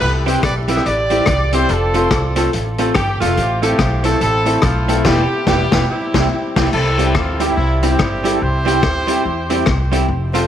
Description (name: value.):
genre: ska.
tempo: 143 BPM.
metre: 4/4.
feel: swing 60% on 8ths.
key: C major.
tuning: A4 = 440 Hz.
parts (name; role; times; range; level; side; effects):
warm horn section; melody; 0.0-9.7 s; G3 to E5; -19 LUFS; right 1 dB; tape echo.
upright bass; bass; 0.0-10.4 s; E1 to E2; -19 LUFS; equal; none.
vintage drum kit; drums; 0.0-10.4 s; crash cymbal, hi-hat, kick drum, rim click, snare drum, splash cymbal; -20 LUFS; left 3 dB; none.
archtop guitar, miked and amplified; accompaniment; 0.3-10.5 s; F3 to A4; -21 LUFS; right 7 dB; none.
warm upright piano; stabs; 0.3-10.5 s; B3 to A4; -23 LUFS; left 8 dB; none.
room: moderate echo chamber reverb, RT60 1.3 s, small room ambience.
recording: 1960s-style stereo with parts hard left and right, vinyl crackle.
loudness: -14 LUFS.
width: side -10 dB against mid.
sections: 0.0-6.7 A section; 6.7-10.5 B section.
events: band accent 5.1-6.7.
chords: 0.0 C; 1.7 F; 3.4 Am; 5.1 Em; 5.9 C.